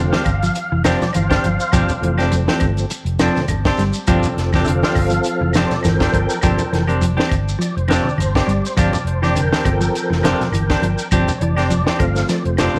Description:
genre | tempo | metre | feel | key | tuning
afrobeat | 102 BPM | 4/4 | swing 55% on 16ths | unclear | A4 = 440 Hz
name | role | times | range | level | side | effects
tonewheel organ | accompaniment | 0.0-12.8 s | F3 to G5 | -25 LUFS | equal | slow rotary speaker, overdrive, chorus vibrato
mellow electric guitar | arpeggios | 0.0-12.8 s | D3 to G3 | -25 LUFS | equal | slapback echo
fingered electric bass | bass | 0.0-12.7 s | F1 to G1 | -23 LUFS | equal | none
semi-hollow electric guitar | stabs | 0.1-12.8 s | F3 to G4 | -24 LUFS | equal | spring reverb
compact cocktail drum kit | drums | 0.1-12.7 s | hi-hat, kick drum, snare drum | -24 LUFS | equal | none
congas | percussion | 0.1-12.8 s | none | -31 LUFS | equal | none
claves | percussion | 0.3-12.7 s | none | -34 LUFS | equal | none
shekere | percussion | 0.3-12.8 s | none | -32 LUFS | equal | none
room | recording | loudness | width
small room ambience | none | -18 LUFS | mono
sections
0.0-12.8 A section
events
tonewheel organ solo 0.0-12.8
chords
0.0 G7sus4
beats
0.55 1.14 | 1.73 2.31 2.90 3.49 | 4.08 4.67 5.25 5.84 | 6.43 7.01 7.60 8.19 | 8.77 9.36 9.95 10.53 | 11.12 11.70 12.29

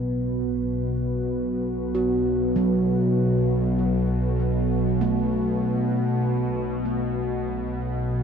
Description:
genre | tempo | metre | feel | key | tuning
dark ambient drone | 49 BPM | 4/4 | straight | unclear | A4 = 440 Hz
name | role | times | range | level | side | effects
deep dark ambient pad | sustained chords | 0.0-8.2 s | B3 to B4 | -29 LUFS | right 1 dB | chorus, built-in reverb
gamelan-type bossed gongs | arpeggios | 0.0-8.2 s | A2 to F#4 | -27 LUFS | right 1 dB | tape echo
bowed-like drone | drone | 0.0-8.2 s | B1 to B2 | -24 LUFS | equal | built-in reverb, phaser
bronze singing bowl | texture | 0.0-8.2 s | none | barely audible | none | none
room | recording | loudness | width
wet huge ambient reverb, RT60 8.6 s | dark, warm production | -22 LUFS | side -7 dB against mid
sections
0.0-8.2 A section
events
fade-out on ambient pad 0.0-8.2; filter sweep on synth drone 0.0-8.2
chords
0.0 B5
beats
| 0.12 1.34 2.56 3.79 | 5.01 6.24 7.46

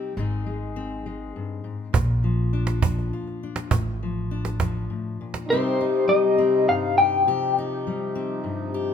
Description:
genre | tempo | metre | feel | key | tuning
acoustic folk duo or small band | 102 BPM | 3/4 | straight | C minor | A4 = 440 Hz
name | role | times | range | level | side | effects
fingerpicked steel-string acoustic guitar | accompaniment | 0.0-8.9 s | G2 to Ab4 | -26 LUFS | left 4 dB | none
upright bass | bass | 0.2-4.9 s | Ab1 to Bb1 | -26 LUFS | right 1 dB | none
cajon | percussion | 1.9-5.5 s | none | -24 LUFS | right 4 dB | none
electric guitar through a small old amp | melody | 5.5-7.5 s | C5 to G5 | -21 LUFS | left 2 dB | tremolo
hand-pumped harmonium | sustained chords | 5.5-8.9 s | C3 to Eb4 | -31 LUFS | right 3 dB | none
room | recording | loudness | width
light reverb | minimal, uncompressed stereo recording | -21 LUFS | side -7 dB against mid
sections
0.0-5.5 A section; 5.5-8.9 B section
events
none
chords
0.2 Ab; 1.9 Bb; 3.7 F6/A; 5.5 Cm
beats
| 0.17 0.76 1.35 | 1.94 2.53 3.12 | 3.72 4.31 4.90 | 5.49 6.08 6.67 | 7.26 7.84 8.44

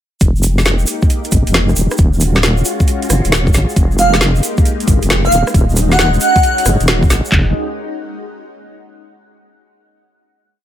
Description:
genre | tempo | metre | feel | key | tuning
UK garage, two-step garage | 135 BPM | 4/4 | swing 67% on 16ths | F phrygian | A4 = 441 Hz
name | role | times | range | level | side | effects
soft string machine | sustained chords | 0.5-7.5 s | Ab3 to G4 | -22 LUFS | left 1 dB | phaser, ensemble chorus, sidechain pumping
deep soft wobble bass | bass | 0.2-7.5 s | Eb1 to Ab1 | -14 LUFS | equal | chorus
garage drum kit | drums | 0.2-7.5 s | handclaps, kick drum, toms | -13 LUFS | equal | overdrive
garage drum kit | drums | 0.2-7.2 s | hi-hat, rim click, snare drum | -18 LUFS | equal | overdrive
tube shaker | percussion | 0.2-7.3 s | none | -24 LUFS | right 2 dB | none
airy dreamy lead | melody | 4.0-6.7 s | F5 to Gb5 | -16 LUFS | right 1 dB | chorus, dub echo
room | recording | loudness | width
digital ambience | none | -11 LUFS | side -11 dB against mid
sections
0.2-7.3 groove; 7.3-9.1 final chord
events
none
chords
0.2 Fm11; 1.8 Ebm11; 3.8 Fm11; 5.3 Ebm7; 7.3 Fm11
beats
| 0.21 0.66 1.10 1.54 | 1.99 2.43 2.88 3.32 | 3.77 4.21 4.66 5.10 | 5.54 5.99 6.43 6.88 | 7.32

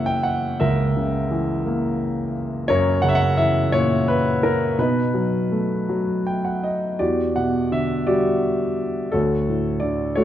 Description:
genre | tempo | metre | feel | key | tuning
classical, lyrical solo piano | 53-60 BPM (dotted quarters) | 6/8 | rubato | unclear | A4 = 439 Hz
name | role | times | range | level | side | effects
warm concert grand piano | solo | 0.0-10.2 s | C#2 to G5 | -19 LUFS | equal | none
room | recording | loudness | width
light reverb | dark, warm production | -19 LUFS | side -11 dB against mid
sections
0.0-7.0 A section; 7.0-10.2 B section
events
grand piano fill 5.9-7.0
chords
0.0 F#7; 4.8 B7; 7.0 Em9; 9.1 Dmaj7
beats
| 0.60 1.66 | 2.69 3.72 | 4.78 5.88 | 7.00 8.07 | 9.13 10.18

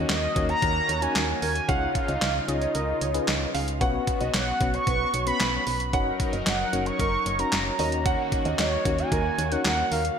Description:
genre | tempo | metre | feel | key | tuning
synth-pop | 113 BPM | 4/4 | straight | unclear | A4 = 439 Hz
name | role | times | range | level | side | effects
dark baby grand piano | second line | 0.0-10.0 s | A#4 to F#5 | -32 LUFS | right 4 dB | analog chorus, ping-pong delay
FM electric piano with tremolo | accompaniment | 0.0-9.9 s | B3 to C#5 | -32 LUFS | left 5 dB | none
brassy analog pad | sustained chords | 0.0-10.2 s | C#3 to A#4 | -34 LUFS | equal | chorus
solid FM bass | bass | 0.0-10.1 s | F#1 to D#2 | -30 LUFS | equal | none
mellow horn-like synth lead | melody | 0.1-10.2 s | C#5 to C#6 | -27 LUFS | right 1 dB | chorus
detuned 8-bit digital drum machine | drums | 0.1-10.2 s | handclaps, hi-hat, kick drum, snare drum | -28 LUFS | equal | gated reverb
room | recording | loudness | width
moderate lush hall reverb, RT60 1.8 s, digital ambience | bright 1980s-style digital production | -22 LUFS | side -7 dB against mid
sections
0.0-10.2 A section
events
none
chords
0.0 D#m7; 1.7 C#add9; 3.8 Bsus2; 5.9 F#6; 7.8 D#m7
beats
0.09 0.62 1.16 | 1.69 2.22 2.75 3.28 | 3.81 4.34 4.87 5.40 | 5.93 6.46 7.00 7.53 | 8.06 8.59 9.12 9.65 | 10.18

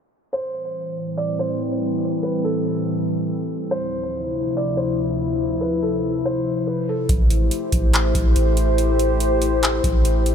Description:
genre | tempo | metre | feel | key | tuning
hip hop, atmospheric cloud-rap | 142 BPM | 4/4 | half-time | unclear | A4 = 440 Hz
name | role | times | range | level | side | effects
felt-muted upright piano | melody | 0.3-7.1 s | A4 to D5 | -27 LUFS | right 1 dB | ping-pong delay
warbly tape-like pad | sustained chords | 0.7-10.3 s | D2 to C5 | -22 LUFS | left 2 dB | chorus, built-in reverb, sidechain pumping
soft 808-style bass | bass | 7.1-10.3 s | A1 | -20 LUFS | equal | none
booming analog drum machine | drums | 7.1-10.3 s | handclaps, hi-hat, kick drum | -21 LUFS | equal | none
room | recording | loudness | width
light reverb | low-pass filter | -19 LUFS | side -8 dB against mid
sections
0.3-7.1 A section; 7.1-10.3 B section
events
filter sweep 0.3-7.1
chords
0.3 Am7; 3.7 Dm9; 7.1 Am7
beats
| 0.33 0.75 1.18 1.60 | 2.02 2.44 2.87 3.29 | 3.71 4.13 4.56 4.98 | 5.40 5.82 6.25 6.67 | 7.09 7.51 7.94 8.36 | 8.78 9.21 9.63 10.05

